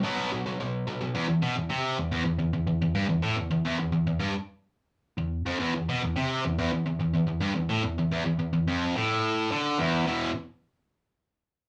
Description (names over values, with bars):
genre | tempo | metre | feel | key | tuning
metal | 108 BPM | 4/4 | straight | E minor | A4 = 441 Hz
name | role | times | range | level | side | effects
distorted electric guitar | solo | 0.0-10.3 s | E2 to B3 | -28 LUFS | equal | overdrive
room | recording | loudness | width
moderate studio ambience, RT60 0.5 s | none | -28 LUFS | mono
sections
0.0-1.2 A section; 1.2-10.1 B section; 10.1-11.7 C section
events
half time 0.0-1.2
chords
0.0 B5; 1.2 N.C.; 10.1 E5